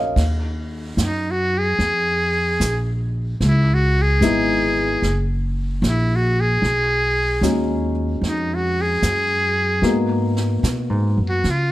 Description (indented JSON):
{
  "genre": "jazz ballad",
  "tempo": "74 BPM",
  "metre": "4/4",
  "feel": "swing 66% on 8ths",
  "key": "Eb minor",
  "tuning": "A4 = 439 Hz",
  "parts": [
    { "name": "warm grand piano", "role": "accompaniment", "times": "0.0-11.5 s", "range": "Gb3 to F5", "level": "-23 LUFS", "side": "left 2 dB", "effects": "none" },
    { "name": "upright bass", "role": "bass", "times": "0.0-11.7 s", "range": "Gb1 to Db3", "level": "-20 LUFS", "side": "equal", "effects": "none" },
    { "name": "vintage brush drum kit", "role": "drums", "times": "0.2-11.7 s", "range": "brushed snare drum, hi-hat, kick drum, ride cymbal, snare drum", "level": "-29 LUFS", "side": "right 2 dB", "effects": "none" },
    { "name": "trumpet with metal mute", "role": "melody", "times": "1.0-11.7 s", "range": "D#4 to Ab4", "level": "-20 LUFS", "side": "equal", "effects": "plate reverb" }
  ],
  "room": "light reverb",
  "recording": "none",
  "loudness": "-17 LUFS",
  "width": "side -16 dB against mid",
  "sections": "0.2-11.7 A section",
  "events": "drum fill 0.0; muted trumpet solo 0.2-11.7",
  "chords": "0.2 Ebmadd9; 3.4 Dbm7; 5.0 Gb; 6.6 B6; 9.8 Abm9"
}